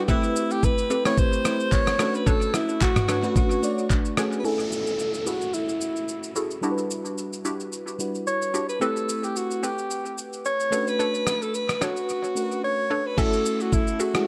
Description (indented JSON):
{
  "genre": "amapiano",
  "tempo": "110 BPM",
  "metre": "4/4",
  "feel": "swing 55% on 16ths",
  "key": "F# phrygian",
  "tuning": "A4 = 439 Hz",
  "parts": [
    { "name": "breathy alto saxophone", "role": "melody", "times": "0.0-14.3 s", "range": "E4 to C#5", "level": "-28 LUFS", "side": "equal", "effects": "low-pass filter, tape echo" },
    { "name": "FM electric piano with soft pad layer", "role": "accompaniment", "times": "0.0-14.3 s", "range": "G3 to D5", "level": "-31 LUFS", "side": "equal", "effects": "chorus, low-pass filter" },
    { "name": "hollow square pluck", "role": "stabs", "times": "0.0-14.3 s", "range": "C4 to G#5", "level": "-34 LUFS", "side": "equal", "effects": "chorus, low-pass filter, tape echo" },
    { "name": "dusty soul sampler-style drum kit", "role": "drums", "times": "0.1-14.3 s", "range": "crash cymbal, handclaps, kick drum, rim click, shaker, toms", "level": "-28 LUFS", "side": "equal", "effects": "none" },
    { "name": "downlifter", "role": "sound effects", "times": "4.4-8.8 s", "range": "none", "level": "-40 LUFS", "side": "equal", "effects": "none" }
  ],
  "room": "light reverb",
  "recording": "echo-heavy mix",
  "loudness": "-25 LUFS",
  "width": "mono",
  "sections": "0.0-4.4 A section; 4.4-13.2 B section; 13.2-14.3 A section",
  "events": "filter sweep 4.4-13.2",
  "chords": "0.1 Am9; 2.0 Bm9; 4.4 F#m9; 6.6 Em9; 8.8 Am9; 10.7 Bm9; 13.2 F#m9"
}